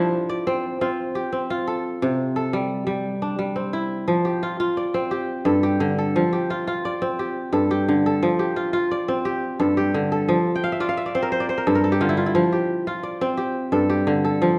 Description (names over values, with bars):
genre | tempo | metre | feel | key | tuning
west african traditional | 116 BPM (dotted quarters) | 12/8 | straight | F major | A4 = 441 Hz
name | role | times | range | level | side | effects
kora | solo | 0.0-14.6 s | G2 to G5 | -22 LUFS | equal | none
room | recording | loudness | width
wet recital hall reverb, RT60 1.3 s | none | -23 LUFS | mono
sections
0.0-4.1 A section; 4.1-14.6 B section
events
kora fill 10.5-12.4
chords
0.0 F; 2.0 C; 4.1 F5; 5.1 G5; 6.2 F; 7.2 G5; 8.2 F; 9.3 G5; 10.3 F; 11.3 G5; 12.4 F5; 13.4 G5